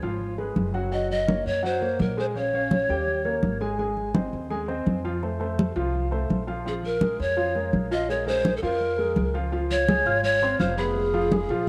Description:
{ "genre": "Afro-Cuban jazz", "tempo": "167 BPM", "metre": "4/4", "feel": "straight", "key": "Bb minor", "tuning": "A4 = 439 Hz", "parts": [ { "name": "warm upright piano", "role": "accompaniment", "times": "0.0-11.7 s", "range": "F3 to F6", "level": "-31 LUFS", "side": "equal", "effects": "cassette tape" }, { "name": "upright bass", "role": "bass", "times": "0.0-11.7 s", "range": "F1 to Gb2", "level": "-34 LUFS", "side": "equal", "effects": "none" }, { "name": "congas", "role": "percussion", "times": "0.0-11.7 s", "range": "none", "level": "-30 LUFS", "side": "equal", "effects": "none" }, { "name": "breathy polished pan flute", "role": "melody", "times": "0.9-3.6, 6.7-11.7 s", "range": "Ab4 to Eb5", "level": "-27 LUFS", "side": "equal", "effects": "cassette tape" } ], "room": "wet spring reverb, RT60 2.3 s", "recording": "home recording on cassette", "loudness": "-25 LUFS", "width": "mono", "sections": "0.0-9.5 A section; 9.5-11.7 B section", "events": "none", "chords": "0.0 Db7 (rootless); 0.9 Gb6; 2.4 Bbm; 3.1 Eb7; 3.8 Ab; 5.2 F; 6.7 Bbm7; 9.5 Dbmaj7; 11.0 Fdim" }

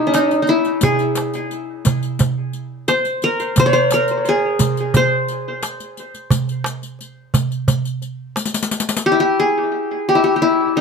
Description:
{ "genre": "Arabic maqam ensemble", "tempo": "88 BPM", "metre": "4/4", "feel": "straight", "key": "C maqam saba", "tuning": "A4 = 438 Hz", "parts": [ { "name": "qanun", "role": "melody", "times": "0.0-10.8 s", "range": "D4-50c to D5-50c", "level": "-16 LUFS", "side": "left 1 dB", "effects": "plate reverb, tape echo" }, { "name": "darbuka", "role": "percussion", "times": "0.1-9.0 s", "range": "none", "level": "-19 LUFS", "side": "right 3 dB", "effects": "none" }, { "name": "riq", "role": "percussion", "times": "0.1-9.0 s", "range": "none", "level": "-24 LUFS", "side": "left 5 dB", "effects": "none" } ], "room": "light reverb", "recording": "none", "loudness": "-16 LUFS", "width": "side -5 dB against mid", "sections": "0.0-9.1 A section; 9.1-10.8 B section", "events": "drum fill 8.4-9.1", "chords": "none" }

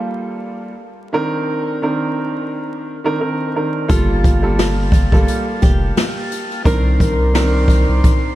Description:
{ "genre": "hip hop, boom-bap hip-hop", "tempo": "87 BPM", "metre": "4/4", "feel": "swing 57% on 16ths", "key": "G minor", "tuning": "A4 = 440 Hz", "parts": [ { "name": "dark upright piano", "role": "accompaniment", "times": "0.0-8.3 s", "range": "Eb3 to Bb4", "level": "-20 LUFS", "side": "right 1 dB", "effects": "cassette tape" }, { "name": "flamenco guitar", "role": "melody", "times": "3.9-7.5 s", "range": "F4 to Bb4", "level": "-25 LUFS", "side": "equal", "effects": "tape echo" }, { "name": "mellow tonewheel organ", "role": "sustained chords", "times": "3.9-8.3 s", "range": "Bb3 to C6", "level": "-27 LUFS", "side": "equal", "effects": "slow rotary speaker" }, { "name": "soft dub sub bass", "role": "bass", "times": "3.9-8.0 s", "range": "F1 to C2", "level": "-17 LUFS", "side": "equal", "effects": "none" }, { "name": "jazz brush drum kit", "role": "drums", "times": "3.9-8.2 s", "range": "hi-hat, kick drum, snare drum", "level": "-15 LUFS", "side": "equal", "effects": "none" } ], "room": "light reverb, small room reverb", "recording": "vinyl crackle", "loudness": "-14 LUFS", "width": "side -15 dB against mid", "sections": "0.0-8.3 A section", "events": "none", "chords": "0.0 Gm9; 1.1 Cm9; 3.9 Gm9; 6.7 Cm9" }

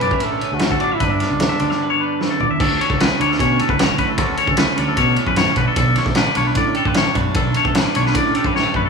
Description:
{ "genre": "math rock and midwest emo", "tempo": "152 BPM", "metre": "4/4", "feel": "straight", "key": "D major", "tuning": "A4 = 440 Hz", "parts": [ { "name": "warm trumpet", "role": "melody", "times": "0.0-2.4 s", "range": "D4 to B4", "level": "-23 LUFS", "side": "left 1 dB", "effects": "none" }, { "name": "twelve-string electric guitar", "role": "accompaniment", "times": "0.0-8.9 s", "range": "D2 to G4", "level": "-22 LUFS", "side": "right 7 dB", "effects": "none" }, { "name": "twangy electric guitar", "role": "arpeggios", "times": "0.0-8.9 s", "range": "A4 to E5", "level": "-20 LUFS", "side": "left 5 dB", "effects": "spring reverb" }, { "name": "growling fingered electric bass", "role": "bass", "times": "0.0-8.9 s", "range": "G1 to B2", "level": "-23 LUFS", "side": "left 1 dB", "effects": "overdrive" }, { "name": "loose indie drum kit", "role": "drums", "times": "0.0-8.8 s", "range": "crash cymbal, kick drum, ride cymbal, snare drum, toms", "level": "-20 LUFS", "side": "equal", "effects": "none" } ], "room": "moderate large studio reverb, RT60 1.4 s", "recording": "band playing live in one room, small room reverb", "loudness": "-15 LUFS", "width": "side -5 dB against mid", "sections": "0.0-2.6 A section; 2.6-8.9 B section", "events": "drum fill 2.2-2.6, 8.5-8.9", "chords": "0.0 Bm9; 1.0 G6; 2.6 Dmaj7; 5.6 Bm7" }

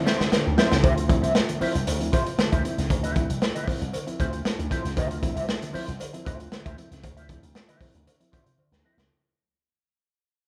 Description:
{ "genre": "funk", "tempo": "116 BPM", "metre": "4/4", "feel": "straight", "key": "D minor", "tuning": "A4 = 440 Hz", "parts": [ { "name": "reed electric piano", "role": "stabs", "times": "0.0-9.0 s", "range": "D3 to E4", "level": "-35 LUFS", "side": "equal", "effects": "spring reverb" }, { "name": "slap bass with an envelope filter", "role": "bass", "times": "0.0-9.1 s", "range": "C2 to D3", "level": "-32 LUFS", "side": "equal", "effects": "none" }, { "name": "mellow electric guitar", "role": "accompaniment", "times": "0.1-9.0 s", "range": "F4 to E5", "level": "-34 LUFS", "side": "equal", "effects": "wah" }, { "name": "crunchy breakbeat drum kit", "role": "drums", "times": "0.1-9.1 s", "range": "hi-hat, kick drum, snare drum", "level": "-27 LUFS", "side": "equal", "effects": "none" }, { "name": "cowbell", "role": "percussion", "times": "0.1-8.7 s", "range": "none", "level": "-39 LUFS", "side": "equal", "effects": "none" } ], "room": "moderate large studio reverb, RT60 1.4 s", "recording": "band playing live in one room", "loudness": "-25 LUFS", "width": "mono", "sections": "0.8-9.1 A section", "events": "drum fill 0.0-0.8, 8.6-9.1; fade-out 0.8-9.1", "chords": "0.0 Dm9" }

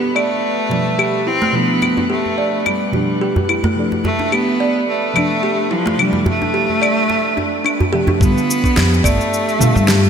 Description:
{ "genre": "organic downtempo", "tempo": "108 BPM", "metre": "4/4", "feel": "swing 55% on 16ths", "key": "unclear", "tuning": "A4 = 440 Hz", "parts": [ { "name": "rich cello", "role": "melody", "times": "0.0-10.1 s", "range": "F3 to C4", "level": "-18 LUFS", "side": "equal", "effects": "digital delay, shimmer reverb" }, { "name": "deep mellow chord stab", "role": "accompaniment", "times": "0.0-10.1 s", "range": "B2 to F4", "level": "-24 LUFS", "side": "right 1 dB", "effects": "chorus, phaser, sidechain pumping, ping-pong delay, shimmer reverb" }, { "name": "kalimba", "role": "arpeggios", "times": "0.0-10.0 s", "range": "A3 to D5", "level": "-20 LUFS", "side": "right 1 dB", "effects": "low-pass filter, ping-pong delay, shimmer reverb" }, { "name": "drifting glass-harmonics texture", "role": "texture", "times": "0.0-8.2 s", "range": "B3 to B4", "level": "-30 LUFS", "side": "left 1 dB", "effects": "chorus, built-in reverb, shimmer reverb" }, { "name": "electronic claves, shaker and snare drum", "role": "drums", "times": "0.2-10.1 s", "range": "none", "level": "-22 LUFS", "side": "left 3 dB", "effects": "overdrive, low-pass filter on perc, low-pass filter on snare, gated reverb" }, { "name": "djembe", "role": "percussion", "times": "0.7-8.2 s", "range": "none", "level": "-22 LUFS", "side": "right 1 dB", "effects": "none" }, { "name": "upright bass", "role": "bass", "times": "8.2-10.1 s", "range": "G1 to B2", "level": "-15 LUFS", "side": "left 1 dB", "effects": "sidechain pumping" }, { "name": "electronic kick drum", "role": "drums", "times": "8.2-9.2 s", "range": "none", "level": "-16 LUFS", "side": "equal", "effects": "none" } ], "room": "moderate lush hall reverb, RT60 2.8 s", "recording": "bright 1980s-style digital production", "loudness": "-14 LUFS", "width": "side -7 dB against mid", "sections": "0.0-8.2 A section; 8.2-10.1 B section", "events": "none", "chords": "0.0 G7; 3.8 Dm7; 8.2 G7" }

